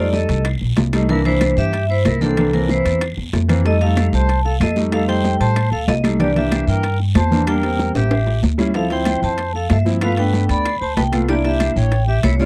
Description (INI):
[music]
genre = Afro-Cuban jazz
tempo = 188 BPM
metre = 4/4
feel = straight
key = C mixolydian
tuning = A4 = 440 Hz
[part]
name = vibraphone with medium hard mallets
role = melody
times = 0.0-12.5 s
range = A4 to B5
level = -25 LUFS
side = equal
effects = none
[part]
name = bright reedy silver concert flute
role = second line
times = 0.0-12.5 s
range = C4 to D5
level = -28 LUFS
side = equal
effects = none
[part]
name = clear concert grand piano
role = accompaniment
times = 0.0-12.5 s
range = E3 to F4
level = -22 LUFS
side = equal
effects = none
[part]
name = upright bass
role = bass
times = 0.0-12.5 s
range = A1 to A2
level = -21 LUFS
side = equal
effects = none
[part]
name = bongos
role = percussion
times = 0.1-12.5 s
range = none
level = -28 LUFS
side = equal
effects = none
[part]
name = congas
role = percussion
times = 0.1-12.5 s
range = none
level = -26 LUFS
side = equal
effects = none
[part]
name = guiro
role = percussion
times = 0.1-12.5 s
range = none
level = -38 LUFS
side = equal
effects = none
[part]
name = timbales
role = percussion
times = 0.1-12.4 s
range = none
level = -30 LUFS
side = equal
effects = none
[part]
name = claves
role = percussion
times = 0.5-12.4 s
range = none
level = -40 LUFS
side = equal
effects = none
[sound]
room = little or no reverb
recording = dry, close 1970s-style studio recording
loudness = -18 LUFS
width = mono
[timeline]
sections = 0.0-12.5 A section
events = drum fill 8.0-8.7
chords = 0.0 F7; 1.1 C7; 3.6 F7; 6.2 C7; 7.5 Em7b5; 8.1 A7; 8.7 Dm7; 10.0 G7; 11.3 C7; 11.9 A7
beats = 0.13 0.45 0.77 | 1.09 1.41 1.73 2.05 | 2.37 2.69 3.01 3.33 | 3.65 3.97 4.29 4.61 | 4.93 5.24 5.56 5.88 | 6.20 6.52 6.84 7.16 | 7.47 7.79 8.11 8.43 | 8.75 9.06 9.38 9.70 | 10.02 10.34 10.65 10.97 | 11.29 11.61 11.93 12.24